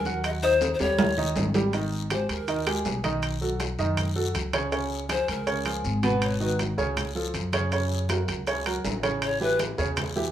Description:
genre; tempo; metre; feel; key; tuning
Afro-Cuban jazz; 160 BPM; 4/4; straight; unclear; A4 = 440 Hz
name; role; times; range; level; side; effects
breathy pan flute; melody; 0.0-2.8, 5.1-6.6, 9.2-9.6 s; Bb4 to Eb5; -27 LUFS; left 3 dB; plate reverb
upright bass; bass; 0.0-10.3 s; Ab1 to F#2; -31 LUFS; equal; none
warm baby grand piano; accompaniment; 0.1-10.3 s; Cb3 to Eb6; -28 LUFS; right 2 dB; plate reverb
bongos; percussion; 0.1-1.7, 7.7-10.3 s; none; -39 LUFS; left 6 dB; none
congas; percussion; 0.1-10.3 s; none; -36 LUFS; left 2 dB; none
guiro; percussion; 0.1-10.3 s; none; -38 LUFS; left 8 dB; none
maracas; percussion; 0.1-10.3 s; none; -46 LUFS; right 7 dB; none
timbales; percussion; 0.2-10.2 s; none; -30 LUFS; right 4 dB; none
room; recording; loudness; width
moderate studio reverb, RT60 0.6 s; rough home demo mix, small room ambience; -24 LUFS; side -11 dB against mid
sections
0.0-1.7 A section; 1.7-10.3 B section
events
drum fill 0.6-1.7; pan flute solo 1.7-10.3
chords
0.2 Ebm; 1.0 Eb7; 1.7 Absus2; 3.2 B9; 4.7 Db6; 6.2 Abm7; 7.0 Dbaug; 7.7 Gb; 9.2 A7

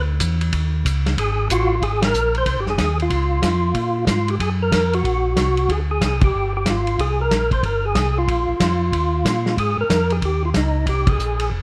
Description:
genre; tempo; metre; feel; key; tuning
soul jazz organ trio; 186 BPM; 4/4; swing 63% on 8ths; Ab major; A4 = 438 Hz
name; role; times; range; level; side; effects
mellow tonewheel organ; bass; 0.0-11.6 s; F1 to Bb2; -24 LUFS; equal; overdrive, chorus vibrato, slow rotary speaker
warm soul drum kit; drums; 0.2-11.6 s; hi-hat, kick drum, ride cymbal, snare drum; -26 LUFS; equal; none
percussive tonewheel organ; melody; 1.2-11.5 s; Eb4 to C5; -24 LUFS; equal; slow rotary speaker, overdrive, chorus vibrato, plate reverb
room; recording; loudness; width
moderate studio reverb, RT60 0.8 s; none; -20 LUFS; mono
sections
0.0-1.8 A section; 1.8-11.6 B section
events
tonewheel organ solo 0.0-1.8; band accent 2.0, 6.2, 11.0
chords
0.0 Cbmadd11/D (rootless); 0.5 Dbsus2; 1.2 Gbmadd9/Ab; 1.8 Ab6; 3.1 Db; 4.4 Gbmaj7; 5.7 Abmaj7#11; 6.3 Fmadd9/G; 7.0 C5; 8.3 Bb5; 8.9 Ebsus2; 9.6 Ab5; 10.9 Abmaj9

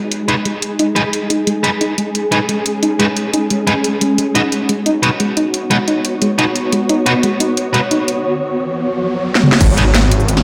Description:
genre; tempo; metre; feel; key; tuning
dark technical drum and bass; 177 BPM; 4/4; straight; G# minor; A4 = 440 Hz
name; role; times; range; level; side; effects
swarming drone; sustained chords; 0.0-10.4 s; G#3 to C#5; -21 LUFS; equal; built-in reverb, sidechain pumping
drum and bass drum kit; drums; 0.1-10.4 s; cabasa, crash cymbal, hi-hat, snare drum, toms; -19 LUFS; equal; overdrive, small room ambience
soft round pluck; arpeggios; 0.3-8.0 s; G#3 to D#4; -21 LUFS; equal; lush chorus, sidechain pumping, dub echo
distorted electric guitar; stabs; 0.3-9.8 s; D#4 to B4; -22 LUFS; equal; distortion, low-pass filter, dub echo
riser and impact; sound effects; 8.2-10.4 s; none; -24 LUFS; equal; none
detuned saw bass; bass; 9.6-10.4 s; G#1; -16 LUFS; equal; chorus, overdrive
electronic kick drum; drums; 9.6-9.7 s; none; -13 LUFS; equal; overdrive, small room ambience
room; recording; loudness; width
moderate lush hall reverb, RT60 2.0 s; none; -15 LUFS; mono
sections
0.0-9.6 A section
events
filter sweep on drum 0.0-9.6; filter sweep on synth pluck 0.0-9.6; riser 8.2-9.6; drum fill 9.4; impact 9.6-10.4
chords
0.0 G#5; 4.2 B; 9.6 G#5

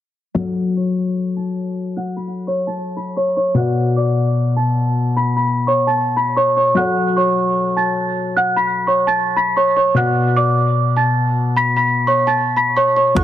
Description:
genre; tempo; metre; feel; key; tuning
hip hop, trap; 150 BPM; 4/4; half-time; F# minor; A4 = 436 Hz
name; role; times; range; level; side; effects
felt-muted upright piano; accompaniment; 0.3-13.2 s; B2 to D5; -19 LUFS; left 2 dB; low-pass filter
worn celesta; melody; 0.4-13.2 s; C#5 to B6; -16 LUFS; right 1 dB; low-pass filter, tape echo
reedy baroque flute; second line; 13.2 s; C#6; -26 LUFS; right 9 dB; none
growling 808-style bass; bass; 13.2 s; F#1; -20 LUFS; right 1 dB; none
trap drum kit; drums; 13.2 s; hi-hat, kick drum; -16 LUFS; equal; overdrive
room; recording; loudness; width
light reverb, studio reverb; dense, heavily limited modern master; -15 LUFS; side -11 dB against mid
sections
0.4-13.2 A section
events
filter sweep 0.4-13.2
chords
0.4 F#m; 3.6 Bm; 6.8 F#m; 10.0 Bm

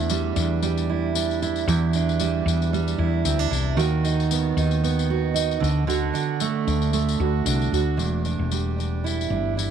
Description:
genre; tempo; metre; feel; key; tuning
acoustic pop; 114 BPM; 4/4; swing 55% on 16ths; E minor; A4 = 440 Hz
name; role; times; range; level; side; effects
fingerpicked steel-string acoustic guitar; accompaniment; 0.0-9.7 s; E2 to F#4; -23 LUFS; right 8 dB; none
woody fretless electric bass; bass; 0.0-9.7 s; E1 to E2; -24 LUFS; left 2 dB; none
tambourine; percussion; 0.1-9.7 s; none; -32 LUFS; left 14 dB; none
room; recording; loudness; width
moderate plate reverb, RT60 3.9 s; 1960s-style stereo with parts hard left and right; -21 LUFS; side -8 dB against mid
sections
0.0-8.0 A section; 8.0-9.7 B section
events
none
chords
0.0 Em7; 3.8 B/D#; 5.6 D; 8.0 Em7

